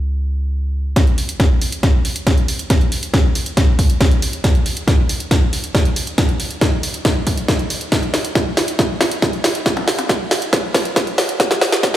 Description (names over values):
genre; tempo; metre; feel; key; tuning
uplifting trance; 138 BPM; 4/4; straight; unclear; A4 = 439 Hz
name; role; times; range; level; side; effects
plucky analog bass; bass; 0.0-0.9 s; Db2; -18 LUFS; equal; tube saturation, sidechain pumping
electronic kick drum; drums; 1.0-11.9 s; none; -16 LUFS; equal; none
techno drum kit; drums; 1.0-12.0 s; hi-hat, percussion blips, snare drum; -18 LUFS; equal; high-pass filter on snare, sidechain pumping on hats, high-pass filter on hats, sidechain pumping on perc, high-pass filter on perc, high-pass filter on room
room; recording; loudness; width
light reverb; played on a big sound system in a bare room, large studio reverb, high-pass filter; -15 LUFS; side -12 dB against mid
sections
1.0-12.0 A section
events
build-up 1.0-12.0; drum fill 1.0-12.0; filter sweep 1.0-12.0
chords
none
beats
0.09 0.53 | 0.96 1.40 1.83 2.27 | 2.70 3.14 3.57 4.01 | 4.44 4.88 5.31 5.75 | 6.18 6.62 7.05 7.49 | 7.92 8.35 8.79 9.22 | 9.66 10.09 10.53 10.96 | 11.40 11.83